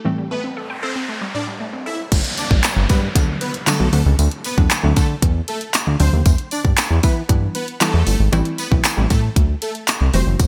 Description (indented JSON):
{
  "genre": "dance-pop",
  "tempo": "116 BPM",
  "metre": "4/4",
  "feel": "straight",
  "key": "unclear",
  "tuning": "A4 = 440 Hz",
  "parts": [
    { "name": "hollow square pluck", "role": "accompaniment", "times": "0.0-10.4 s", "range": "D3 to F#4", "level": "-25 LUFS", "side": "equal", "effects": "chorus, sidechain pumping, low-pass filter" },
    { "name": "resonant blip pluck", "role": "arpeggios", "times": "0.1-2.0 s", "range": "A2 to G5", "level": "-31 LUFS", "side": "equal", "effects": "chorus, sidechain pumping, low-pass filter, digital delay" },
    { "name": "noise sweep and downlifter", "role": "sound effects", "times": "0.4-6.3 s", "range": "none", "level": "-31 LUFS", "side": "equal", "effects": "none" },
    { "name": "supersaw chords", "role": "melody", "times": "0.3-10.2 s", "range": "A3 to E5", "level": "-30 LUFS", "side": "equal", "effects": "subtle chorus, low-pass filter, digital delay" },
    { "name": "chorused synth bass", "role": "bass", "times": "2.1-10.5 s", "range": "F1 to E3", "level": "-20 LUFS", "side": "equal", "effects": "sidechain pumping" },
    { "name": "pop drum kit", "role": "drums", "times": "2.1-10.5 s", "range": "crash cymbal, handclaps, hi-hat, kick drum", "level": "-20 LUFS", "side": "equal", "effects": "gated reverb" },
    { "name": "tambourine", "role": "percussion", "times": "2.1-10.5 s", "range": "none", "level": "-31 LUFS", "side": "equal", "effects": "none" }
  ],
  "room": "light reverb",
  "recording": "bright 1980s-style digital production",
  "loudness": "-18 LUFS",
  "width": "mono",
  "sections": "0.0-2.1 A section; 2.1-10.5 B section",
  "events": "filter sweep 0.0-2.1; noise sweep 0.4-2.1; drop 2.1-10.5",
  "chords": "0.1 Am7; 2.1 Gmaj7; 3.9 D7; 6.3 Em7; 8.3 Am7"
}